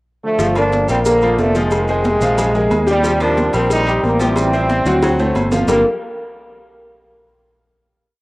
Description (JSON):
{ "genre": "latin, salsa", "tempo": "182 BPM", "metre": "4/4", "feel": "straight", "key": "G minor", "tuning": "A4 = 440 Hz", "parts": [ { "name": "brilliant trombone section", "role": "melody", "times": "0.2-5.8 s", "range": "Bb2 to Eb4", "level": "-17 LUFS", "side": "equal", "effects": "cassette tape" }, { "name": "clear baritone saxophone", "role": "second line", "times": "0.4-5.8 s", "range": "F3 to Ab3", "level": "-28 LUFS", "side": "left 1 dB", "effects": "none" }, { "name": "clear concert grand piano", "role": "accompaniment", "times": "0.4-5.8 s", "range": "F3 to G5", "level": "-20 LUFS", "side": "left 1 dB", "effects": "cassette tape" }, { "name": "fingered electric bass", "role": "bass", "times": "0.4-5.8 s", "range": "F1 to Eb2", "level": "-21 LUFS", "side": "equal", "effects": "none" }, { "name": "congas", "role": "percussion", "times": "0.4-5.8 s", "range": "none", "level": "-24 LUFS", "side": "equal", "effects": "none" }, { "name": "cowbell and bongos", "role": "percussion", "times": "0.4-5.8 s", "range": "none", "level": "-27 LUFS", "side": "left 1 dB", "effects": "none" }, { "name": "maracas", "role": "percussion", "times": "0.4-5.8 s", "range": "none", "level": "-34 LUFS", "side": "right 1 dB", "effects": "none" }, { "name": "agogo bells and timbales", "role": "percussion", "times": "0.6-5.8 s", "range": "none", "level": "-26 LUFS", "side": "right 2 dB", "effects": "none" } ], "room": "wet spring reverb, RT60 2.4 s", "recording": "home recording on cassette", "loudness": "-13 LUFS", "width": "side -21 dB against mid", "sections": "0.0-0.4 pickup bar; 0.4-5.7 mambo (horn riffs); 5.7-7.0 final chord", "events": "drum fill 4.9-5.7", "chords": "0.4 Gm7; 1.7 Fm7; 2.4 Bbsus2; 3.0 Eb69; 4.4 Am7; 5.0 D7; 5.7 Gm9", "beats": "0.06 | 0.40 0.73 1.06 1.39 | 1.72 2.05 2.38 2.71 | 3.04 3.38 3.70 4.03 | 4.36 4.69 5.02 5.35 | 5.68" }